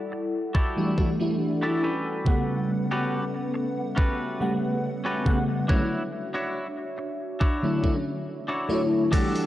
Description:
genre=vaporwave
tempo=70 BPM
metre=4/4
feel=straight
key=unclear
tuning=A4 = 440 Hz
part: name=warbly tape-like pad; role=sustained chords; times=0.0-9.5 s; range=G3 to A5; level=-34 LUFS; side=left 1 dB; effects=chorus, built-in reverb
part: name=clean electric guitar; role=riff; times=0.1-9.5 s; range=C#4 to D5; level=-31 LUFS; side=equal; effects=analog chorus, vintage 12-bit sampler grit, low-pass filter, analog delay
part: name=electronic kick drum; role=drums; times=0.5-9.3 s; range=none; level=-23 LUFS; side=equal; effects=none
part: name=FM electric piano with soft pad layer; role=accompaniment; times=0.8-9.5 s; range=C#3 to F#5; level=-26 LUFS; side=equal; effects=phaser, ensemble chorus, analog delay
part: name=gated 80s digital drum machine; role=drums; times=9.1-9.5 s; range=crash cymbal, hi-hat, tambourine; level=-36 LUFS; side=equal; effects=overdrive
room=wet concert hall reverb, RT60 2.4 s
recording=worn, warbling old tape, cassette tape, warbly pitch drift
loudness=-24 LUFS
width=side -14 dB against mid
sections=0.0-9.1 A section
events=none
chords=0.0 Em11; 1.8 A13; 5.7 Dmaj9

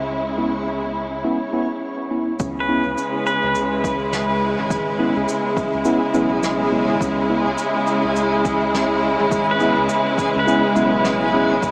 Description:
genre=ambient dub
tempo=104 BPM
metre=4/4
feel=swing 60% on 16ths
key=C# minor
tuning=A4 = 436 Hz
part: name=rich studio string section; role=sustained chords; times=0.0-11.7 s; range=C#3 to E4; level=-22 LUFS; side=equal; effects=none
part: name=round analog bass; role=bass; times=0.0-11.7 s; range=G#1 to C#2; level=-34 LUFS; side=equal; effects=none
part: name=backwards swelling texture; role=texture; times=0.0-11.7 s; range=G#4 to C#5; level=-34 LUFS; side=equal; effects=none
part: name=tine electric piano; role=stabs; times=0.4-11.5 s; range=B3 to E4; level=-26 LUFS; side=equal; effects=dub echo
part: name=cabasa and snare drum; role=drums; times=2.4-11.7 s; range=none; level=-35 LUFS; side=equal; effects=dub echo
part: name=electronic kick drum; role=drums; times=2.4-11.7 s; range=none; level=-30 LUFS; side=equal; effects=overdrive
part: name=pedal steel guitar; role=arpeggios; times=2.6-4.5, 9.5-11.6 s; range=B4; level=-27 LUFS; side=equal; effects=tape echo
room=wet huge ambient reverb, RT60 8.1 s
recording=dreamy mix soaked in reverb, small speaker sound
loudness=-20 LUFS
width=mono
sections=0.0-2.4 A section; 2.4-11.7 B section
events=none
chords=0.0 C#m7

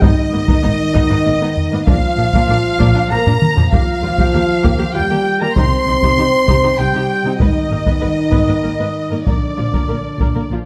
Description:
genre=cinematic, epic orchestral film score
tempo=97 BPM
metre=3/4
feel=straight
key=unclear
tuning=A4 = 439 Hz
part: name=warm symphonic violin section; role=melody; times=0.0-10.5 s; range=D5 to C6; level=-27 LUFS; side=equal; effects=none
part: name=warm symphonic violin section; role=second line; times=0.0-10.5 s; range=D5 to C6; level=-31 LUFS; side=equal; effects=none
part: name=rich symphonic viola section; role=accompaniment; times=0.0-10.6 s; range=F3 to Cb5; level=-27 LUFS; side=equal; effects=none
part: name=mellow French horn section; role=sustained chords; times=0.0-10.5 s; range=D4 to C5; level=-23 LUFS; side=equal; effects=none
part: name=warm trombone section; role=sustained chords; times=0.0-10.5 s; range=D3 to C4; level=-25 LUFS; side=equal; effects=none
part: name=mellow trumpet section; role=stabs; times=0.0-10.5 s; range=D5 to C6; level=-24 LUFS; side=equal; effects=none
part: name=dark symphonic cello section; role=bass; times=0.0-10.6 s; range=Ab2 to Eb3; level=-24 LUFS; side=equal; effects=none
part: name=warm symphonic double bass section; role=bass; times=0.0-10.6 s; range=Ab1 to Eb2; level=-24 LUFS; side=equal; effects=none
part: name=solo taiko drums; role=drums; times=0.0-10.7 s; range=none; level=-19 LUFS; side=equal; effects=none
room=moderate scoring stage reverb, RT60 1.5 s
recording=none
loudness=-15 LUFS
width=mono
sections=0.0-10.7 A section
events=drum fill 3.3-3.7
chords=0.0 Abm; 1.9 Bb; 3.7 Ebadd9; 5.6 Cm; 7.4 Abmadd9; 9.3 Bb

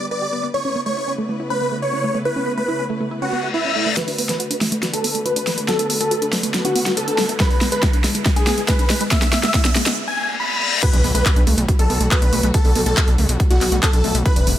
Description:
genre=uplifting trance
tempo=140 BPM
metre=4/4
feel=straight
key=B minor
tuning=A4 = 440 Hz
part: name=big supersaw lead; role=melody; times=0.0-14.5 s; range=E4 to B5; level=-23 LUFS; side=equal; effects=phaser, cassette tape, sidechain pumping, low-pass filter, dub echo
part: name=dark studio string section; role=sustained chords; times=0.0-14.6 s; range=C#3 to B4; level=-30 LUFS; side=left 2 dB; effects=sidechain pumping
part: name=wide unison pluck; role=arpeggios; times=0.0-14.5 s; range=G#3 to B4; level=-26 LUFS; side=right 2 dB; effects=sidechain pumping, tape echo
part: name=reverse cymbal, riser and impact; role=sound effects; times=3.3-12.5 s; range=none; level=-26 LUFS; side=left 2 dB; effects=none
part: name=dark concert grand piano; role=second line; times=4.0-14.5 s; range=F#4 to E5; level=-28 LUFS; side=equal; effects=sidechain pumping, low-pass filter, tape echo
part: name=big-room dance drum kit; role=drums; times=4.0-14.6 s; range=crash cymbal, handclaps, hi-hat, snare drum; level=-22 LUFS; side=equal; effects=overdrive, low-pass filter on snare, low-pass filter on hats, low-pass filter on cymbals
part: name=electronic kick drum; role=drums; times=7.4-14.3 s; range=none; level=-17 LUFS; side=equal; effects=overdrive
part: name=gritty driven synth bass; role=bass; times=10.9-14.6 s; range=E1 to C#2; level=-20 LUFS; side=equal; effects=sidechain pumping
room=digital ambience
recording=none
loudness=-16 LUFS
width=side -12 dB against mid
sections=0.0-4.0 A section; 4.0-10.8 B section; 10.8-14.6 C section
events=reverse cymbal 3.3-4.0, 10.0-10.8; build-up 4.0-10.8; drum fill 4.0-10.0; riser 4.0-10.0; filter sweep on supersaw synth 4.0-10.8; filter sweep on synth pluck 4.0-10.8; filter sweep on grand piano 4.0-10.8; break 10.0-10.8; drop 10.8-14.6; impact 10.8-12.5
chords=0.0 G; 0.5 Aadd9; 4.0 Bm7; 7.4 E7; 10.8 Bm7

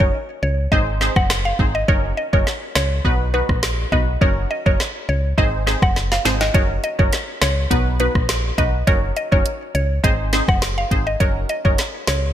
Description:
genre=dancehall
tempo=103 BPM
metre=4/4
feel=straight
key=F# major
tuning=A4 = 439 Hz
part: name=mallet-like synth pluck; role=melody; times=0.0-12.3 s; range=B4 to F#5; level=-24 LUFS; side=equal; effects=chorus, digital delay
part: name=wavetable chord stab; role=accompaniment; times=0.0-11.8 s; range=B3 to B#4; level=-24 LUFS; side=equal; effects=wide subtle chorus
part: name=solid FM bass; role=bass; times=0.0-12.3 s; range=F#1 to C#2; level=-21 LUFS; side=equal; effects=none
part: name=afro-pop drum kit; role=drums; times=0.0-12.2 s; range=hi-hat, kick drum, rim click, snare drum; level=-19 LUFS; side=equal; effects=gated reverb
room=light reverb, digital ambience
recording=bright 1980s-style digital production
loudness=-16 LUFS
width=side -11 dB against mid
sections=0.0-12.3 A section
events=break 0.0-6.5; drum fill 6.0-6.5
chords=0.0 F#6; 0.7 G#; 1.9 F#6; 3.0 B; 4.2 F#6; 5.4 G#; 6.5 F#6; 7.7 B; 8.9 F#6; 10.0 G#; 11.2 F#6

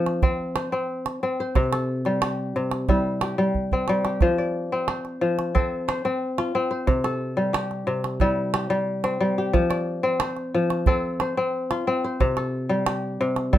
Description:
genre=west african traditional, West African string and xylophone music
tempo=90 BPM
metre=4/4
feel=straight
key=F major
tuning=A4 = 435 Hz
part: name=kora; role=arpeggios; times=0.0-13.6 s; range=C3 to D5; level=-23 LUFS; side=left 2 dB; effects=none
part: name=calabash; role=percussion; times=0.1-13.6 s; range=none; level=-24 LUFS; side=right 3 dB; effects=none
room=moderate studio reverb, RT60 0.5 s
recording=none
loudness=-22 LUFS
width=side -12 dB against mid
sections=0.0-13.6 A section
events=drum fill 3.5-4.2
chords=0.0 F5; 1.6 C; 4.2 F; 6.9 C; 9.5 F; 12.2 C5

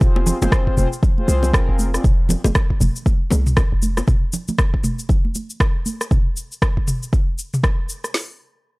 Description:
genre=afro house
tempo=118 BPM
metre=4/4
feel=swing 60% on 16ths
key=F minor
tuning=A4 = 440 Hz
part: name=mellow synth brass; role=stabs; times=0.0-2.0 s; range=C4 to D5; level=-25 LUFS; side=left 1 dB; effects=chorus, sidechain pumping, tape echo
part: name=warm 808-style bass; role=bass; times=0.0-4.0 s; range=F1 to C2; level=-19 LUFS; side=equal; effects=sidechain pumping
part: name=afro-pop drum kit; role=drums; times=0.0-8.3 s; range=hi-hat, kick drum, snare drum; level=-17 LUFS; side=equal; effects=small room ambience
part: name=afro-pop drum kit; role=drums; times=0.0-8.1 s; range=rim click, shaker, toms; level=-24 LUFS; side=equal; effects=small room ambience
part: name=bongos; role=percussion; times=0.2-4.1 s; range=none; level=-24 LUFS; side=left 2 dB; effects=none
part: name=congas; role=percussion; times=0.3-6.0 s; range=none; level=-26 LUFS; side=right 3 dB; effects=none
room=little or no reverb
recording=dry, gritty hardware recording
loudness=-16 LUFS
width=side -25 dB against mid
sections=0.0-8.1 A section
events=none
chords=0.0 Fm; 4.1 N.C.

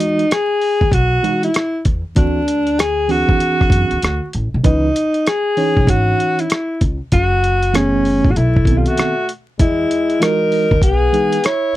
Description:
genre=hip hop, jazz-hop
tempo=97 BPM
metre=4/4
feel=swing 62% on 16ths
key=unclear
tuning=A4 = 438 Hz
part: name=breathy alto saxophone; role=melody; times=0.0-11.8 s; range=C#4 to C#5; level=-16 LUFS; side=left 1 dB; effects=none
part: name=mellow tine electric piano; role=accompaniment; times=0.0-11.4 s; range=D#3 to C#5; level=-20 LUFS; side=right 3 dB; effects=medium stereo tremolo
part: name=dusty soul sampler-style drum kit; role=drums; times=0.0-11.6 s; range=hi-hat, kick drum, rim click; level=-17 LUFS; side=equal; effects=none
part: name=upright bass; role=bass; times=0.8-11.1 s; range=F#1 to F#2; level=-19 LUFS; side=equal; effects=none
part: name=breathy tenor saxophone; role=second line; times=8.4-11.8 s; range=G3 to E4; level=-24 LUFS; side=left 6 dB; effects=none
room=little or no reverb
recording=dry, close 1970s-style studio recording, vinyl crackle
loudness=-13 LUFS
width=side -15 dB against mid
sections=0.0-4.6 A section; 4.6-11.8 A section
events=none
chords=0.0 Emaj9; 2.2 D9; 4.6 C#m9; 7.1 F#m11; 8.4 B7b9; 9.6 Emaj9

